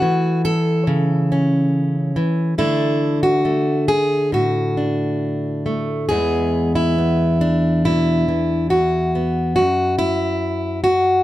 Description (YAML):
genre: folk, solo fingerstyle acoustic guitar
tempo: 70 BPM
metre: 4/4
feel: rubato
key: E mixolydian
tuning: A4 = 441 Hz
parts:
  - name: fingerpicked plugged-in steel-string acoustic guitar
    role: solo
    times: 0.0-11.2 s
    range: E2 to A4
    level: -16 LUFS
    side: equal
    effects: none
room: light reverb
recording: none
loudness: -16 LUFS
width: side -15 dB against mid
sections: 0.0-6.1 A section; 6.1-11.2 B section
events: none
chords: 0.0 A; 2.6 D; 6.1 Eadd9; 9.6 F#7(no3)